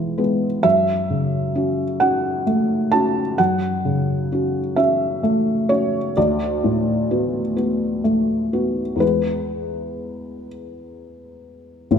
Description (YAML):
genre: neoclassical minimalist piano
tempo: 43 BPM (dotted quarters)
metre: 6/8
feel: uneven beats, rubato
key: unclear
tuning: A4 = 444 Hz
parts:
  - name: felt-muted upright piano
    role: solo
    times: 0.0-12.0 s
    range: A1 to A5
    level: -18 LUFS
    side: equal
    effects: none
room: moderate scoring stage reverb, RT60 1.5 s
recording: none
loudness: -18 LUFS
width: side -7 dB against mid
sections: 0.0-11.9 A section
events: none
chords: 0.0 E; 0.6 F#m7; 6.2 D6; 9.0 E